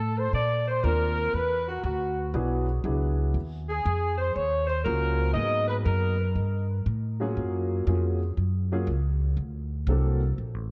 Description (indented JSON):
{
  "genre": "jazz",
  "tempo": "119 BPM",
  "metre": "4/4",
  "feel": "swing 68% on 8ths",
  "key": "unclear",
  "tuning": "A4 = 440 Hz",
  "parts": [
    { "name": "mellow flugelhorn", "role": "melody", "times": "0.0-6.3 s", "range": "F#4 to Eb5", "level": "-32 LUFS", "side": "equal", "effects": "analog delay" },
    { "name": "growling alto saxophone", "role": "second line", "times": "0.0-6.3 s", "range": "F#4 to Eb5", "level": "-35 LUFS", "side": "equal", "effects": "none" },
    { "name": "upright bass", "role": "bass", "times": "0.0-10.7 s", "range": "A1 to Bb2", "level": "-29 LUFS", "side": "equal", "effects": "none" },
    { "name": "warm baby grand piano", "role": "accompaniment", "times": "0.8-10.2 s", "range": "F#3 to Bb4", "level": "-34 LUFS", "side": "equal", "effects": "subtle chorus" }
  ],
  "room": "moderate lush hall reverb, RT60 2.2 s",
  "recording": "dreamy mix soaked in reverb, cassette tape",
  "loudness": "-27 LUFS",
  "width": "mono",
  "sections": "0.0-10.7 A section",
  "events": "none",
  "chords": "0.0 Bbmaj7; 1.3 E9; 3.4 Ebm11; 5.4 Abm7; 6.4 Gsus2; 7.4 Gbmaj7; 9.4 D7b13"
}